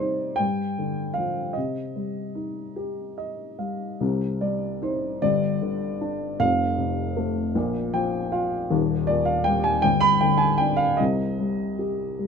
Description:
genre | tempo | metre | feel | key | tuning
classical, lyrical solo piano | 51 BPM (dotted quarters) | 6/8 | rubato | C minor | A4 = 445 Hz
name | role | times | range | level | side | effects
dark upright piano | solo | 0.0-12.3 s | Eb1 to B5 | -22 LUFS | left 1 dB | none
room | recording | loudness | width
little or no reverb | close, detailed microphones | -22 LUFS | side -6 dB against mid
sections
0.0-4.0 A section; 4.0-12.3 A section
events
upright piano fill 2.8-4.0, 7.6-8.7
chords
0.4 G5; 1.6 Cm; 5.2 G5; 6.4 F; 7.6 Bb5; 8.7 Eb; 9.9 G5; 11.0 Cm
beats
0.38 | 1.56 2.76 | 4.00 5.22 | 6.39 7.55 | 8.71 9.85 | 11.00 12.20

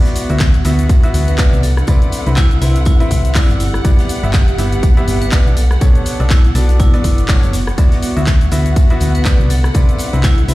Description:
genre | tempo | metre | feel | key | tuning
piano house | 122 BPM | 4/4 | swing 57% on 16ths | D mixolydian | A4 = 440 Hz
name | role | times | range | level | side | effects
warm studio violin section | sustained chords | 0.0-10.5 s | F#5 | -30 LUFS | equal | sidechain pumping
bright concert grand piano | riff | 0.0-10.5 s | B3 to E5 | -23 LUFS | left 1 dB | sidechain pumping, digital delay
granular cloud pad | texture | 0.0-10.5 s | B3 to C#6 | -26 LUFS | right 1 dB | built-in reverb, sidechain pumping
house drum kit | drums | 0.1-10.5 s | handclaps, hi-hat, rim click, shaker | -24 LUFS | left 1 dB | none
unplugged drum kit | drums | 0.1-10.5 s | hi-hat, snare drum, tambourine | -34 LUFS | left 1 dB | none
solid FM bass | bass | 0.3-10.5 s | F#1 to D2 | -14 LUFS | equal | sidechain pumping
electronic kick drum | drums | 0.4-10.4 s | none | -11 LUFS | equal | none
vibraphone with hard mallets | melody | 1.3-10.5 s | E4 to B4 | -26 LUFS | equal | digital delay
room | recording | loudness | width
studio reverb | played on a big sound system in a bare room, large studio reverb | -10 LUFS | side -18 dB against mid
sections
0.0-10.5 A section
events
none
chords
0.0 D69; 1.6 Cmaj9; 3.8 G6; 5.6 Bm9; 7.8 D69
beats
0.40 0.90 1.39 | 1.88 2.37 2.86 3.35 | 3.85 4.34 4.83 5.32 | 5.81 6.30 6.80 7.29 | 7.78 8.27 8.76 9.26 | 9.75 10.24

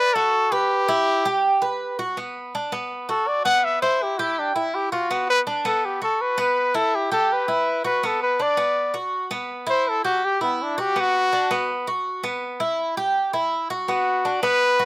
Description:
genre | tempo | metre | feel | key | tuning
latin | 164 BPM | 4/4 | straight | unclear | A4 = 440 Hz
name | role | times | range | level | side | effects
warm trumpet | melody | 0.0-14.9 s | B3 to F#5 | -20 LUFS | left 1 dB | none
Cuban tres | arpeggios | 0.0-14.9 s | B3 to D5 | -24 LUFS | right 2 dB | none
room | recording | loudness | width
little or no reverb | recorded outdoors, with no room sound | -20 LUFS | side -20 dB against mid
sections
0.0-2.2 A section; 2.2-13.9 B section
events
trumpet solo 2.2-13.9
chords
0.0 Gmaj7; 0.7 Emadd9; 2.2 B5; 3.6 Cmaj7/B (rootless); 5.1 Bm7; 6.6 Gmaj13/B; 8.0 Bm; 9.5 A7sus2/B (rootless); 11.0 B5; 12.4 Emadd9/B; 13.9 Bm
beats
0.34 | 0.70 1.07 1.44 1.80 | 2.17 2.54 2.90 3.27 | 3.63 4.00 4.37 4.73 | 5.10 5.46 5.83 6.20 | 6.56 6.93 7.30 7.66 | 8.03 8.39 8.76 9.13 | 9.49 9.86 10.22 10.59 | 10.96 11.32 11.69 12.05 | 12.42 12.79 13.15 13.52 | 13.88 14.25 14.61

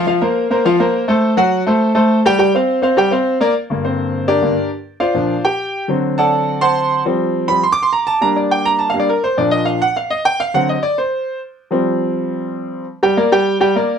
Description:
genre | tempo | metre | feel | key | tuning
latin | 206 BPM | 4/4 | straight | G minor | A4 = 440 Hz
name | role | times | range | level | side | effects
clear concert grand piano | solo | 0.0-14.0 s | G2 to D6 | -14 LUFS | equal | none
room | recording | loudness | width
moderate studio reverb, RT60 0.5 s | none | -14 LUFS | side -7 dB against mid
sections
0.0-3.6 A section; 3.6-12.9 B section; 12.9-14.0 C section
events
grand piano solo 3.6-12.9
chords
0.1 Bbsus2; 1.2 F#dim; 2.4 Fsus2; 3.6 Gm; 4.7 Bbadd9; 5.9 D7; 7.0 Fsus2; 8.2 Gm; 9.4 Bb; 10.5 D7; 11.7 Fsus2; 12.9 Gm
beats
| 0.07 0.36 0.65 0.94 | 1.23 1.52 1.81 2.10 | 2.39 2.68 2.97 3.27 | 3.56 3.85 4.14 4.43 | 4.72 5.01 5.30 5.59 | 5.88 6.17 6.47 6.76 | 7.05 7.34 7.63 7.92 | 8.21 8.50 8.79 9.09 | 9.38 9.67 9.96 10.25 | 10.54 10.83 11.12 11.42 | 11.71 12.00 12.29 12.58 | 12.87 13.17 13.46 13.75

